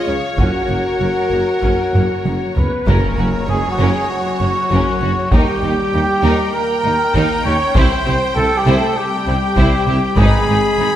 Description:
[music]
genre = cinematic, epic orchestral film score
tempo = 98 BPM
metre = 4/4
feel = straight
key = unclear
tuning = A4 = 440 Hz
[part]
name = rich symphonic violin section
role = melody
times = 0.0-11.0 s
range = A#4 to B5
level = -26 LUFS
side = left 4 dB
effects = none
[part]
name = rich symphonic violin section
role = second line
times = 0.0-10.9 s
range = C#4 to C#5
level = -24 LUFS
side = left 2 dB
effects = none
[part]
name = rich symphonic viola section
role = accompaniment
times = 0.0-11.0 s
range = F#3 to C#5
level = -26 LUFS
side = right 1 dB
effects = none
[part]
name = mellow French horn section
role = sustained chords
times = 0.0-11.0 s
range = F#3 to F#4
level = -23 LUFS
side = left 2 dB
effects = none
[part]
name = dark trumpet section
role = stabs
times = 0.0-11.0 s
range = F#4 to F#5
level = -20 LUFS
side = right 1 dB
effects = none
[part]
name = rich symphonic cello section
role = bass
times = 0.1-10.9 s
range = D#2 to C#3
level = -23 LUFS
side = right 1 dB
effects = none
[part]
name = rich symphonic double bass section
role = bass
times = 0.1-10.9 s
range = F#1 to D#2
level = -22 LUFS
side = right 2 dB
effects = none
[part]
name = warm tuba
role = bass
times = 0.1-10.9 s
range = F#1 to D#2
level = -24 LUFS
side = right 2 dB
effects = none
[part]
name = taiko ensemble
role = drums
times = 0.4-10.7 s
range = none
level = -19 LUFS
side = equal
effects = none
[part]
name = impact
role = sound effects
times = 2.9-5.3 s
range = none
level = -27 LUFS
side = equal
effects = none
[sound]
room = moderate scoring stage reverb, RT60 2.2 s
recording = none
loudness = -13 LUFS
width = side -11 dB against mid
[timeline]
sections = 0.0-2.9 A section; 2.9-11.0 B section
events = drum fill 1.9-2.9; impact 2.9-5.3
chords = 0.4 F#; 5.3 D#; 7.8 C; 10.2 G#m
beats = | 0.39 1.01 1.63 2.26 | 2.88 3.49 4.10 4.71 | 5.32 5.93 6.54 7.15 | 7.75 8.36 8.97 9.57 | 10.18 10.78

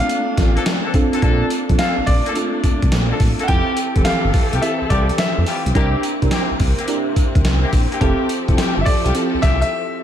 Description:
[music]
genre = R&B, new jack swing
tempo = 106 BPM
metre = 4/4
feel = swing 67% on 16ths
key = F major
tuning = A4 = 440 Hz
[part]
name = clear baby grand piano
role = melody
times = 0.0-10.0 s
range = D5 to G5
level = -23 LUFS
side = equal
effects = slapback echo
[part]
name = mellow FM electric piano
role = accompaniment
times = 0.0-10.0 s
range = E3 to Bb4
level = -23 LUFS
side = right 2 dB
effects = chorus, slapback echo
[part]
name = warm studio string section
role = sustained chords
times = 0.0-10.0 s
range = C3 to A4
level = -27 LUFS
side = left 2 dB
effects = none
[part]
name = boom bap sampler-style drum kit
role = drums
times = 0.0-9.7 s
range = hi-hat, kick drum, snare drum, tambourine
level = -19 LUFS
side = equal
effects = none
[part]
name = smooth gliding synth bass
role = bass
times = 0.4-9.6 s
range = E1 to F2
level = -19 LUFS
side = equal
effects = none
[part]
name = mellow horn section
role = stabs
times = 0.6-9.6 s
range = A3 to A4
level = -26 LUFS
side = left 3 dB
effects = slapback echo, ping-pong delay
[sound]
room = moderate lush hall reverb, RT60 1.5 s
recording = big arena sound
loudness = -15 LUFS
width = side -10 dB against mid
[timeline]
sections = 0.0-1.2 A section; 1.2-10.0 B section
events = break 9.7-10.0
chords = 0.0 Bbmaj9; 3.5 Fmaj9; 5.8 C7; 8.0 Fmaj9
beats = 0.09 0.66 | 1.22 1.79 2.35 2.92 | 3.48 4.05 4.62 5.18 | 5.75 6.32 6.88 7.45 | 8.01 8.58 9.15 9.71

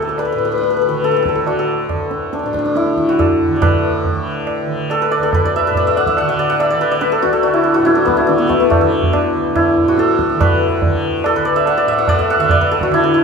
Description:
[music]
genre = indian classical, Hindustani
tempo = 141 BPM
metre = 4/4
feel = straight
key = D raga bhupali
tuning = A4 = 441 Hz
[part]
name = santur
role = melody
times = 0.0-13.2 s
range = A3 to F#5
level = -14 LUFS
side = left 1 dB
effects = none
[part]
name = tanpura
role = drone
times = 0.0-13.2 s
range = D2 to D3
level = -23 LUFS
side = right 2 dB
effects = none
[part]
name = tabla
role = percussion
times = 0.1-13.1 s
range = none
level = -20 LUFS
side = right 2 dB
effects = none
[sound]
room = wet large studio reverb, RT60 1.1 s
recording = band playing live in one room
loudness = -13 LUFS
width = side -5 dB against mid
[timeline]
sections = 0.0-3.6 A section; 3.6-13.2 B section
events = none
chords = none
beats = | 0.19 0.62 1.05 1.48 | 1.91 2.33 2.76 3.19 | 3.62 4.04 4.47 4.90 | 5.32 5.75 6.17 6.60 | 7.02 7.45 7.87 8.29 | 8.71 9.14 9.56 9.98 | 10.40 10.82 11.24 11.66 | 12.08 12.50 12.92

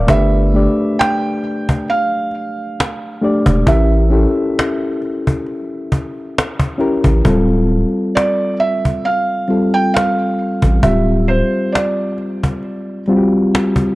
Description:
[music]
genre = lo-fi hip hop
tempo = 67 BPM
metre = 4/4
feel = swing 55% on 16ths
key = D minor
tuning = A4 = 440 Hz
[part]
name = mellow reed electric piano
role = accompaniment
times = 0.0-13.9 s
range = G3 to F5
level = -17 LUFS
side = left 1 dB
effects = none
[part]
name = saturated sub bass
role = bass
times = 0.0-11.4 s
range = D1 to A1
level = -14 LUFS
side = equal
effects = none
[part]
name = felt-muted upright piano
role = melody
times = 0.1-13.0 s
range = C5 to G5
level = -19 LUFS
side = right 2 dB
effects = tape echo
[part]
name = cajon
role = drums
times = 0.1-13.9 s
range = none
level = -17 LUFS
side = equal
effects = none
[sound]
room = light reverb, small room ambience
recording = cassette tape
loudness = -13 LUFS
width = side -19 dB against mid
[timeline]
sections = 0.0-7.2 A section; 7.2-13.9 B section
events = none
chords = 0.1 G13; 3.7 A7b9; 7.2 Dm7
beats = | 0.08 0.98 1.87 2.77 | 3.67 4.56 5.46 6.35 | 7.25 8.14 9.04 9.93 | 10.83 11.72 12.62 13.52

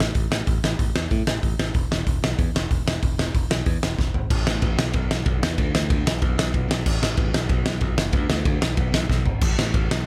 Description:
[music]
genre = punk rock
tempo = 188 BPM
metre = 4/4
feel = straight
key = unclear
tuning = A4 = 440 Hz
[part]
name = modern bright picked electric bass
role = bass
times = 0.0-10.0 s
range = E1 to A2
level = -28 LUFS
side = equal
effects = none
[part]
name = loose indie drum kit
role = drums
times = 0.0-10.0 s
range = crash cymbal, hi-hat, kick drum, ride cymbal, snare drum, toms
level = -24 LUFS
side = equal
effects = none
[sound]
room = little or no reverb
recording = none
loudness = -23 LUFS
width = mono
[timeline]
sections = 0.0-4.3 A section; 4.3-10.1 B section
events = drum fill 4.0-4.3, 9.1-9.4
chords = none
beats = 0.15 | 0.47 0.79 1.11 1.43 | 1.75 2.07 2.39 2.71 | 3.03 3.35 3.67 3.99 | 4.31 4.62 4.95 5.26 | 5.58 5.90 6.22 6.54 | 6.86 7.18 7.50 7.82 | 8.14 8.46 8.78 9.10 | 9.42 9.74

